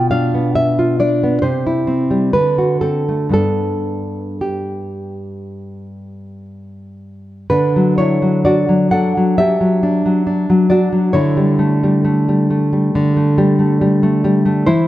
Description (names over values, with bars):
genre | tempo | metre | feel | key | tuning
romantic piece for solo classical guitar | 55-70 BPM | 4/4 | rubato | G major, D major from 7.5 s | A4 = 440 Hz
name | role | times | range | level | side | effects
nylon-string guitar | solo | 0.0-14.9 s | G2 to G5 | -14 LUFS | equal | none
room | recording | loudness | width
moderate scoring stage reverb, RT60 2.0 s | none | -13 LUFS | side -14 dB against mid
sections
0.0-7.5 A section; 7.5-14.9 B section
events
none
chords
0.0 Bdim; 1.4 C; 2.3 D7; 3.4 G; 7.5 D; 11.2 A7/D